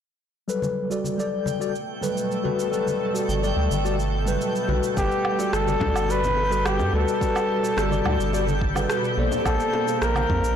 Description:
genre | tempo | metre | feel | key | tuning
sunset chillout | 107 BPM | 4/4 | straight | G major | A4 = 440 Hz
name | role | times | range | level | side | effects
tine electric piano | accompaniment | 0.5-10.6 s | F#3 to A5 | -26 LUFS | moving between left 7 dB and right 3 dB | medium tremolo, auto-pan, low-pass filter, digital delay
shimmering ambient pad | sustained chords | 1.6-10.6 s | B2 to A4 | -30 LUFS | equal | chorus, built-in reverb
electronic shaker, woodblock and rim click | drums | 0.5-10.6 s | none | -31 LUFS | right 2 dB | studio reverb
twinkling granular texture | texture | 1.1-10.6 s | G5 to G6 | -35 LUFS | equal | built-in reverb
congas and bongos | percussion | 0.6-10.4 s | none | -33 LUFS | left 4 dB | none
round analog bass | bass | 3.3-10.6 s | G1 to G2 | -25 LUFS | right 1 dB | none
trumpet with bucket mute | melody | 5.0-10.6 s | G4 to B4 | -25 LUFS | left 1 dB | vintage 12-bit sampler grit, ping-pong delay
electronic kick drum | drums | 5.0-10.4 s | none | -28 LUFS | right 1 dB | studio reverb
room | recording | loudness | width
light reverb | blown-out, overdriven recording, overdrive | -21 LUFS | side -8 dB against mid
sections
0.5-5.0 A section; 5.0-10.6 B section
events
filter sweep on tine electric piano 0.5-5.0; filter sweep on ambient pad 0.5-5.0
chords
0.5 Gmaj9; 9.2 Bbmaj9

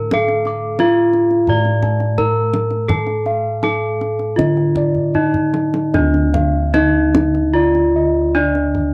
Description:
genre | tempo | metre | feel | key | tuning
Javanese gamelan | 75-91 BPM | 4/4 | straight | D pelog | A4 = 440 Hz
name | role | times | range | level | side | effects
gamelan-type bronze metallophone | melody | 0.0-8.9 s | D4 to D5 | -19 LUFS | equal | cassette tape
gamelan-type bossed gongs | bass | 0.0-8.9 s | D2 to A4-30c | -22 LUFS | equal | transformer saturation
gamelan-type bossed gongs | arpeggios | 0.1-8.8 s | D5 to D6 | -26 LUFS | equal | cassette tape
kendang | percussion | 0.1-8.9 s | none | -24 LUFS | equal | none
room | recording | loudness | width
light reverb | home recording on cassette | -16 LUFS | mono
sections
0.0-5.9 A section; 5.9-8.9 B section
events
drum fill 5.0-5.9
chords
none

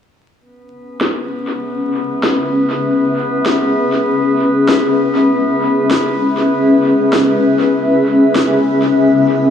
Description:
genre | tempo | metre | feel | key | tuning
ambient dub | 98 BPM | 4/4 | swing 54% on 16ths | C# minor | A4 = 437 Hz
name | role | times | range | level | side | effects
granular cloud pad | sustained chords | 1.4-9.5 s | C#4 to E5 | -13 LUFS | left 1 dB | built-in reverb
drifting glass-harmonics texture | texture | 0.8-9.5 s | B3 to B4 | -20 LUFS | left 2 dB | chorus, built-in reverb
electronic snare drum | drums | 1.0-8.5 s | none | -20 LUFS | left 1 dB | low-pass filter on snare, low-pass filter on room, dub echo
room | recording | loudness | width
moderate huge ambient reverb, RT60 8.9 s | vinyl crackle, small room ambience | -12 LUFS | side -8 dB against mid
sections
0.4-9.5 A section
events
none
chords
0.4 C#m7

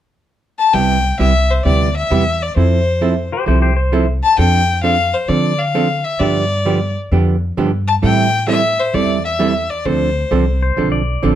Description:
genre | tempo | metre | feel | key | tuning
country, western swing | 132 BPM | 4/4 | swing 67% on 8ths | C major | A4 = 439 Hz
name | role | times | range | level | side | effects
clear fiddle | melody | 0.6-10.6 s | C5 to A5 | -17 LUFS | left 4 dB | none
archtop guitar, miked and amplified | accompaniment | 0.7-11.4 s | C3 to A4 | -17 LUFS | right 4 dB | none
upright bass | bass | 0.7-11.4 s | A1 to D3 | -18 LUFS | equal | none
clean lap steel guitar | second line | 3.3-4.1, 10.6-11.4 s | G4 to D5 | -21 LUFS | left 3 dB | none
room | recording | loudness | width
moderate studio reverb, RT60 0.6 s | none | -13 LUFS | side -11 dB against mid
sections
0.7-11.4 A section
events
none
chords
0.0 N.C.; 0.7 Cmaj7; 2.6 Fmaj7; 4.4 Dm7/F; 6.2 G7; 8.0 Am7; 9.9 Dm7

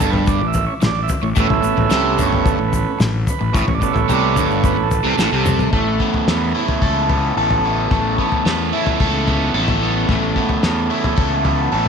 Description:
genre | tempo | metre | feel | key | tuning
psychedelic rock | 110 BPM | 4/4 | straight | A mixolydian | A4 = 440 Hz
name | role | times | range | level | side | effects
combo organ | sustained chords | 0.0-11.9 s | E3 to E5 | -21 LUFS | right 9 dB | none
crunchy overdriven guitar | riff | 0.0-11.9 s | G2 to A4 | -19 LUFS | left 1 dB | phaser
fuzz fingered electric bass | bass | 0.0-11.9 s | G1 to E2 | -22 LUFS | left 1 dB | overdrive
cloth-damped thuddy drum kit | drums | 0.0-11.9 s | kick drum, snare drum, toms | -21 LUFS | left 2 dB | none
egg shaker | percussion | 0.0-5.7 s | none | -38 LUFS | left 17 dB | none
room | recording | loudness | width
moderate echo chamber reverb, RT60 2.1 s | 1960s-style stereo with parts hard left and right | -15 LUFS | side -6 dB against mid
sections
0.0-5.7 A section; 5.7-11.9 B section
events
transistor combo organ solo 0.0-5.7; drum fill 5.2-5.7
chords
0.0 Aadd9

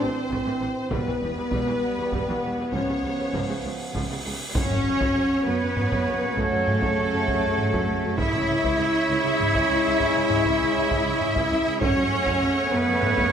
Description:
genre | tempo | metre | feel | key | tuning
cinematic, epic orchestral film score | 66 BPM (dotted quarters) | 12/8 | straight | F# minor from 4.5 s | A4 = 436 Hz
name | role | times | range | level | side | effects
rich symphonic violin section | melody | 0.0-13.3 s | A4 to E5 | -34 LUFS | left 3 dB | none
clear symphonic violin section | second line | 0.0-13.3 s | A4 to E5 | -32 LUFS | left 2 dB | none
clear symphonic viola section | accompaniment | 0.0-13.3 s | C3 to E4 | -30 LUFS | right 2 dB | none
mellow French horn section | sustained chords | 0.0-13.3 s | A3 to E4 | -29 LUFS | left 3 dB | none
mellow trombone section | sustained chords | 0.0-13.3 s | C#3 to C4 | -32 LUFS | right 3 dB | none
clear symphonic cello section | bass | 0.0-13.3 s | C#2 to E4 | -29 LUFS | right 2 dB | none
rich symphonic double bass section | bass | 0.0-13.2 s | E1 to F#2 | -32 LUFS | right 3 dB | none
taiko ensemble | drums | 0.3-13.3 s | none | -29 LUFS | equal | none
cymbal swell and impact | sound effects | 2.9-8.2 s | none | -35 LUFS | right 1 dB | none
warm woodwind section | sustained chords | 4.5-13.3 s | C#4 to F#5 | -32 LUFS | equal | none
clear trumpet | stabs | 4.5-13.3 s | C#5 | -28 LUFS | right 3 dB | none
room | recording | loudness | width
moderate scoring stage reverb, RT60 1.7 s | none | -21 LUFS | side -8 dB against mid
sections
0.0-4.5 A section; 4.5-13.3 B section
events
cymbal swell 2.9-4.5; impact 4.5-8.2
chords
0.0 Am; 0.9 Em; 2.7 C#7; 4.5 F#m; 8.2 C#m; 11.8 F#m

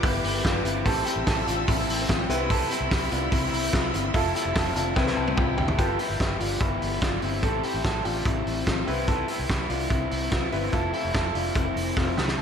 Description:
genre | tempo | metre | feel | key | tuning
jangly indie pop | 146 BPM | 4/4 | straight | C major | A4 = 440 Hz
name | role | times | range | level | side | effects
bright upright piano | accompaniment | 0.0-12.4 s | B3 to A5 | -34 LUFS | left 3 dB | slapback echo
crunchy overdriven guitar | accompaniment | 0.0-12.4 s | G2 to G4 | -32 LUFS | right 4 dB | none
dark chamber string section | sustained chords | 0.0-5.8 s | C4 to E6 | -33 LUFS | left 1 dB | none
electric guitar through a small old amp | arpeggios | 0.0-12.4 s | B3 to A4 | -29 LUFS | left 3 dB | ping-pong delay, slapback echo
vintage muted fingered electric bass | bass | 0.0-12.4 s | F1 to D2 | -31 LUFS | equal | none
loose indie drum kit | drums | 0.0-12.4 s | hi-hat, kick drum, snare drum, toms | -27 LUFS | equal | none
room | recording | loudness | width
moderate scoring stage reverb, RT60 1.6 s, small room ambience | big arena sound | -23 LUFS | side -7 dB against mid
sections
0.0-5.8 A section; 5.8-12.4 B section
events
upright piano fill 4.6-5.8; drum fill 5.0-5.8, 12.0-12.4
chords
0.0 G7; 0.9 Am7; 2.3 Cmaj7; 4.1 Fmaj7; 5.0 Cmaj7; 5.8 G7; 7.4 Am7; 8.9 Cmaj7; 10.7 Fmaj7

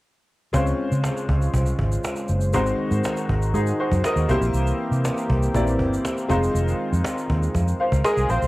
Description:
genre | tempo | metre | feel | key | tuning
polished 1980s jazz-funk pop | 120 BPM | 4/4 | straight | Db major | A4 = 439 Hz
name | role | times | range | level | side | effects
clear grand piano | accompaniment | 0.5-8.5 s | Ab3 to C6 | -25 LUFS | left 1 dB | analog chorus, cassette tape
warm analog pad | sustained chords | 0.5-8.5 s | Db3 to C5 | -28 LUFS | right 1 dB | chorus, cassette tape
vintage muted fingered electric bass | bass | 0.5-8.5 s | F1 to Db3 | -22 LUFS | equal | none
cajon | drums | 0.5-8.5 s | none | -30 LUFS | equal | cassette tape
tube shaker | percussion | 0.5-8.5 s | none | -41 LUFS | right 3 dB | none
fat analog lead | melody | 8.0-8.5 s | Ab4 to C5 | -22 LUFS | equal | chorus
room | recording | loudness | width
light reverb | home recording on cassette | -20 LUFS | side -18 dB against mid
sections
0.5-8.5 A section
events
grand piano fill 7.8-8.5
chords
0.5 Dbmaj7; 2.5 Ab7; 4.3 C7; 6.3 Fm7

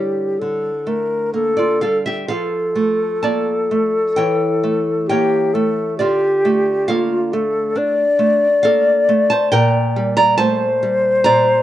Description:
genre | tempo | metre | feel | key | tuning
romantic duo for flute and classical guitar | 63-70 BPM | 4/4 | rubato | D minor | A4 = 439 Hz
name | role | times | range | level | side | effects
mellow hollow silver concert flute | melody | 0.0-11.6 s | F4 to D5 | -16 LUFS | left 2 dB | slapback echo
nylon-string guitar | accompaniment | 0.0-11.6 s | Bb2 to Bb5 | -18 LUFS | right 3 dB | slapback echo
room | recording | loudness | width
little or no reverb | recorded outdoors, with no room sound, nothing above 10.6 kHz | -14 LUFS | side -13 dB against mid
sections
0.0-11.6 A section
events
none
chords
0.0 A7/D; 2.3 Dm/F; 4.2 A7/E; 6.0 Dm; 9.5 Gm/Bb

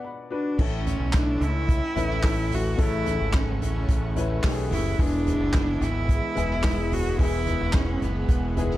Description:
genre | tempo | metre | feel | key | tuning
piano-driven pop | 109 BPM | 4/4 | straight | A major | A4 = 439 Hz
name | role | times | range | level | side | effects
clear cello | melody | 0.0-8.6 s | B3 to F#4 | -29 LUFS | right 1 dB | none
warm upright piano | accompaniment | 0.0-8.8 s | A2 to B5 | -31 LUFS | left 4 dB | none
lush unison pad | sustained chords | 0.6-8.8 s | A3 to C#6 | -40 LUFS | right 1 dB | none
crunchy overdriven guitar | riff | 0.6-8.8 s | E2 to E4 | -35 LUFS | right 3 dB | none
modern bright fingered electric bass | bass | 0.6-8.8 s | E1 to C#2 | -28 LUFS | equal | none
unplugged drum kit | drums | 0.6-8.8 s | crash cymbal, handclaps, hi-hat, kick drum, snare drum, toms | -26 LUFS | equal | none
room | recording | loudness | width
light reverb | dark, warm production | -22 LUFS | side -15 dB against mid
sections
0.6-8.8 A section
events
break 0.0-0.6; upright piano fill 0.0-0.6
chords
0.0 Bm; 0.6 A; 5.0 E

